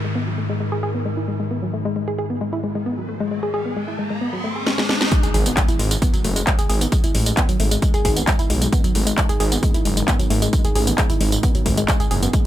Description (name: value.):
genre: driving peak-time techno.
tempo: 133 BPM.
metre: 4/4.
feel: straight.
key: G# phrygian.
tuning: A4 = 440 Hz.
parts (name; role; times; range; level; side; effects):
woody wave-folded pluck; riff; 0.0-12.4 s; F#3 to G#4; -24 LUFS; left 1 dB; chorus, tube saturation, cassette tape, sidechain pumping, digital delay.
metallic inharmonic drone; drone; 0.0-12.5 s; G#2 to D#3; -28 LUFS; equal; chorus, built-in reverb, sidechain pumping.
downlifter, riser and impact; sound effects; 0.0-6.9 s; none; -30 LUFS; equal; none.
techno drum kit; drums; 4.7-12.4 s; handclaps, hi-hat, snare drum, tambourine; -23 LUFS; equal; sidechain pumping on hats, small room ambience, sidechain pumping on perc.
electronic kick drum; drums; 5.1-12.4 s; none; -19 LUFS; equal; overdrive, small room ambience.
detuned saw bass; bass; 5.3-12.3 s; F#1 to B1; -20 LUFS; equal; sidechain pumping.
room: little or no reverb.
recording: none.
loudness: -17 LUFS.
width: side -12 dB against mid.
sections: 0.0-5.1 A section; 5.1-12.5 B section.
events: riser 2.8-5.1; drum fill 4.7-5.1; drop 5.1-12.5; impact 5.1-6.9.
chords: 0.0 G#5; 5.1 G#m.